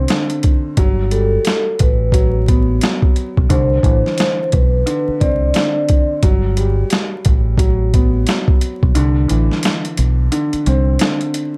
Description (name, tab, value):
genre	hip hop, boom-bap hip-hop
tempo	88 BPM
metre	4/4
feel	swing 61% on 16ths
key	G major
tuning	A4 = 444 Hz
part	dark grand piano	accompaniment	0.0-11.6 s	D3 to C4	-23 LUFS	equal	cassette tape, high-pass filter, low-pass filter
part	deep dub fingered electric bass	bass	0.0-11.0 s	G1 to C2	-18 LUFS	equal	none
part	boom bap sampler-style drum kit	drums	0.1-11.5 s	hi-hat, kick drum, snare drum	-18 LUFS	equal	none
part	vibraphone with soft mallets	melody	1.1-6.2 s	A4 to D5	-22 LUFS	equal	high-pass filter, low-pass filter, slapback echo
room	light reverb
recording	dark, warm production, vinyl crackle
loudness	-15 LUFS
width	mono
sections	0.0-11.6 A section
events	kick muted 9.0-11.6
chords	0.0 Cadd9; 0.8 Gmaj9; 3.5 Cmaj9; 6.2 Gmaj9; 9.0 Cadd9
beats	0.09 | 0.77 1.46 2.14 2.82 | 3.50 4.18 4.87 5.55 | 6.23 6.91 7.59 8.27 | 8.96 9.64 10.32 11.00